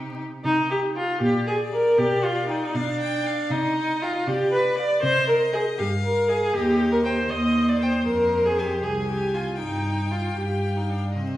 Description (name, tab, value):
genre	quick classical-period movement for string quartet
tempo	78 BPM (dotted quarters)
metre	6/8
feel	straight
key	C minor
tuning	A4 = 445 Hz
part	clear violin	melody	0.0-11.4 s	G4 to Ab5	-34 LUFS	left 5 dB	none
part	rich viola	accompaniment	0.0-11.4 s	C4 to Eb5	-22 LUFS	equal	none
part	clear cello	bass	0.0-11.4 s	C2 to C3	-26 LUFS	right 1 dB	none
part	rich violin	second line	1.0-11.4 s	D5 to Ab5	-39 LUFS	left 2 dB	none
room	wet recital hall reverb, RT60 1.5 s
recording	heard from further back in the room, vinyl crackle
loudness	-21 LUFS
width	side -14 dB against mid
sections	0.4-11.4 A section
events	none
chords	0.4 C5; 1.2 Bb; 2.0 G/B; 3.5 Cm; 4.3 Csus24; 5.0 Cm; 6.5 Cm/Eb; 8.1 Fm; 9.6 Ebadd9/G; 10.4 Ebmaj9/G